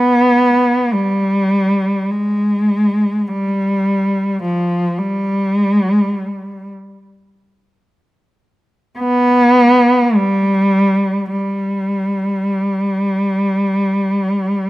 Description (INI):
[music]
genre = caucasian folk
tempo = free time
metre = none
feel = none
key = unclear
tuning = A4 = 440 Hz
[part]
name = dark cello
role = solo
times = 0.0-14.7 s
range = F3 to B3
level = -13 LUFS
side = equal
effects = slapback echo
[sound]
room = little or no reverb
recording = recorded outdoors, with no room sound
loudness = -13 LUFS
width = side -17 dB against mid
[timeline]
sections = 0.0-14.7 A section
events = none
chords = none